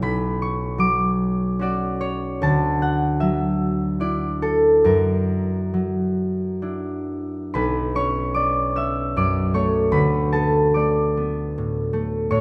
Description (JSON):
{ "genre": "classical, solo harp piece", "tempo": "62-79 BPM", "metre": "3/4", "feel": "rubato", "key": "B minor", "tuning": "A4 = 444 Hz", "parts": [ { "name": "concert harp", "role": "solo", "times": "0.0-12.4 s", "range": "B1 to E6", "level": "-22 LUFS", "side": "equal", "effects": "none" } ], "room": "moderate recital hall reverb, RT60 1.4 s", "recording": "none", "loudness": "-22 LUFS", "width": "mono", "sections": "0.0-7.5 A section; 7.5-12.4 B section", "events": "none", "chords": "0.0 Bmadd9; 2.4 D69; 4.9 F#aug7; 7.5 Bm9; 9.9 Dsus2", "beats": "| 0.03 0.80 1.58 | 2.42 3.21 4.02 | 4.88 5.76 6.62 | 7.54 8.36 9.14 | 9.93 10.76 11.54 | 12.31" }